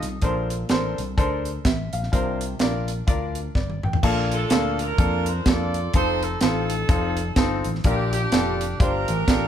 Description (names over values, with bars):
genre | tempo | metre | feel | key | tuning
uptempo gospel | 126 BPM | 4/4 | swing 59% on 8ths | unclear | A4 = 436 Hz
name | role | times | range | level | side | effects
clear grand piano | accompaniment | 0.0-9.5 s | Bb2 to G5 | -26 LUFS | left 2 dB | none
fingered electric bass | bass | 0.0-9.5 s | F1 to F2 | -27 LUFS | left 1 dB | none
tight funk drum kit | drums | 0.0-9.4 s | crash cymbal, hi-hat, kick drum, snare drum, toms | -22 LUFS | right 1 dB | none
warm horn section | melody | 4.3-9.5 s | C4 to D5 | -27 LUFS | right 3 dB | none
room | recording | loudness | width
moderate large studio reverb, RT60 1.2 s | band playing live in one room | -20 LUFS | side -9 dB against mid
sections
0.0-4.0 A section; 4.0-9.5 B section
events
drum fill 3.6-4.0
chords
0.2 Bbmaj9; 2.1 C9sus4; 4.0 Bbmaj7; 5.9 F7; 7.8 Bb6